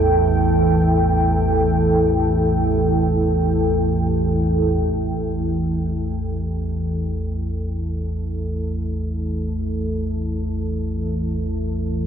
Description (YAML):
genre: dark ambient drone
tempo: free time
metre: none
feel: none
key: unclear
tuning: A4 = 440 Hz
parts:
  - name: deep dark ambient pad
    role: sustained chords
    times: 0.0-12.1 s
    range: E3 to A5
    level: -20 LUFS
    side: right 1 dB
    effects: chorus, built-in reverb
  - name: deep rumbling drone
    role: drone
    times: 0.0-12.1 s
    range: A1 to E2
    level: -22 LUFS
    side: equal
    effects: built-in reverb, lush chorus
room: wet cathedral reverb, RT60 6.8 s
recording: worn, warbling old tape, cassette tape, warbly pitch drift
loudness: -18 LUFS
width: side -8 dB against mid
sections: 0.0-4.9 A section; 4.9-12.1 B section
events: filter sweep on synth drone 4.9-12.1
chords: 0.0 A5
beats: free time